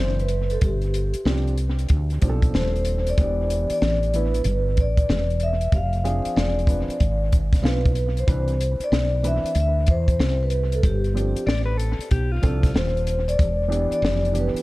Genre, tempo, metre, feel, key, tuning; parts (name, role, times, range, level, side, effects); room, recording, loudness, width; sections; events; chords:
hip hop, jazz-hop; 94 BPM; 4/4; swing 64% on 16ths; C major; A4 = 439 Hz
vibraphone with soft mallets; melody; 0.0-14.6 s; G4 to F5; -26 LUFS; left 1 dB; dub echo
dark grand piano; accompaniment; 0.0-14.6 s; E3 to C5; -31 LUFS; right 2 dB; dub echo
woody fretless electric bass; bass; 0.0-14.6 s; Eb1 to E2; -23 LUFS; equal
compact cocktail drum kit; drums; 0.2-14.6 s; hi-hat, kick drum, snare drum; -22 LUFS; equal
mellow electric guitar; second line; 11.5-13.2 s; F4 to D5; -31 LUFS; left 4 dB
small room ambience; echo-heavy mix; -19 LUFS; side -19 dB against mid
0.0-14.6 A section
0.0 Cmaj9; 0.6 G7sus4; 3.2 Em7; 5.7 Fm6; 8.3 Cmaj9; 10.8 G7sus4; 13.4 Em7